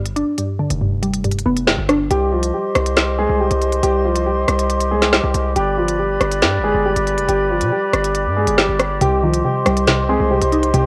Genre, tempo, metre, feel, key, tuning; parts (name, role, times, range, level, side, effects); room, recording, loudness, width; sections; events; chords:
hip hop, drill; 139 BPM; 4/4; half-time; C harmonic minor; A4 = 441 Hz
glassy wavetable pluck; accompaniment; 0.0-2.1, 9.0-10.9 s; G2 to Eb4; -22 LUFS; equal; chorus, low-pass filter
hard-hitting 808-style bass; bass; 0.0-10.9 s; F1 to B2; -24 LUFS; equal
drill drum kit; drums; 0.1-10.8 s; hi-hat, rim click, snare drum; -21 LUFS; equal; cassette tape
dark concert grand piano; melody; 2.1-10.9 s; F3 to Ab4; -22 LUFS; equal; low-pass filter, cassette tape
mellow hollow flute section; sustained chords; 2.1-10.9 s; G4 to C6; -24 LUFS; equal
light reverb, studio ambience; home recording on cassette; -17 LUFS; mono
0.0-2.1 A section; 2.1-10.9 B section
0.0 G; 2.1 Cm; 5.6 G; 9.0 Cm